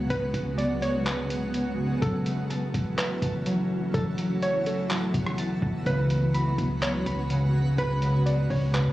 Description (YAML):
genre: hip hop, atmospheric cloud-rap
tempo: 125 BPM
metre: 4/4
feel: half-time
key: F# minor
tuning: A4 = 440 Hz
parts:
  - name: granular cloud pad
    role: sustained chords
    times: 0.0-8.9 s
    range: C#3 to F#4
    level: -29 LUFS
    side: equal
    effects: built-in reverb, sidechain pumping
  - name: clean 808-style bass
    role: bass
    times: 0.0-8.9 s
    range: F#1 to C#3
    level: -33 LUFS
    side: equal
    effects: none
  - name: twinkling granular texture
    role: texture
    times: 0.0-8.9 s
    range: C#4 to F#5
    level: -40 LUFS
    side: right 1 dB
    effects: built-in reverb
  - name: warbly dusty pluck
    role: melody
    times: 0.1-8.9 s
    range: A4 to D5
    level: -32 LUFS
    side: right 1 dB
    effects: chorus, tape echo
  - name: lo-fi sampler-style drum kit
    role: drums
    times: 0.1-8.9 s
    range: handclaps, hi-hat, kick drum, rim click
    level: -32 LUFS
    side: equal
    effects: none
  - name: concert harp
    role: arpeggios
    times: 2.0-8.9 s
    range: C#3 to B5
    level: -28 LUFS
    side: equal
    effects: tape echo
room: digital ambience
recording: recorded on a phone in the room, club reverb, compression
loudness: -24 LUFS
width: side -16 dB against mid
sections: 0.0-2.0 A section; 2.0-8.9 B section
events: none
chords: 0.0 C#7sus4; 2.0 F#m7; 5.9 C#7sus4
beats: | 0.10 0.58 1.06 1.54 | 2.02 2.50 2.98 3.46 | 3.94 4.42 4.90 5.38 | 5.86 6.34 6.82 7.30 | 7.78 8.26 8.74